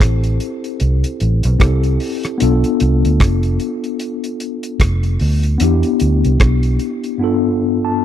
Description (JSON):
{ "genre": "lovers rock reggae", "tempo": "75 BPM", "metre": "4/4", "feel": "swing 59% on 16ths", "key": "unclear", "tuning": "A4 = 440 Hz", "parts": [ { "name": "mellow tine electric piano", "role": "accompaniment", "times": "0.0-8.0 s", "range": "G2 to A5", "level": "-18 LUFS", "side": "left 3 dB", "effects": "medium stereo tremolo" }, { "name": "vintage muted fingered electric bass", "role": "bass", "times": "0.0-6.8 s", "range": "F1 to E2", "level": "-14 LUFS", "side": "right 1 dB", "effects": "none" }, { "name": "cloth-damped thuddy drum kit", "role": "drums", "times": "0.0-7.2 s", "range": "hi-hat, kick drum, rim click", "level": "-18 LUFS", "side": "right 1 dB", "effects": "none" } ], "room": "small room reverb", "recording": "dry, close 1970s-style studio recording", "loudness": "-14 LUFS", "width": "side -10 dB against mid", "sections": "0.0-8.0 A section", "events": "none", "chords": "0.0 D7sus4 (rootless); 2.4 Bm7b5; 5.6 Em7; 7.2 G7", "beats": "0.00 0.80 1.60 | 2.40 3.20 4.00 4.80 | 5.60 6.40 7.20 8.00" }